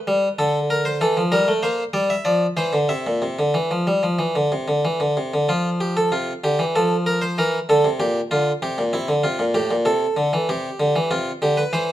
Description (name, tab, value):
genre	classical, baroque-style two-part invention for harpsichord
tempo	96 BPM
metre	4/4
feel	straight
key	F major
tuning	A4 = 440 Hz
part	harpsichord	solo	0.0-11.9 s	A2 to E5	-18 LUFS	equal	none
room	moderate stone room reverb, RT60 1.2 s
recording	close, detailed microphones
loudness	-18 LUFS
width	side -13 dB against mid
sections	0.0-5.5 A section; 5.5-11.9 B section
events	none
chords	0.4 D5; 1.6 Bb; 2.9 C; 5.5 F; 8.0 C7/Bb; 9.2 F; 10.5 C5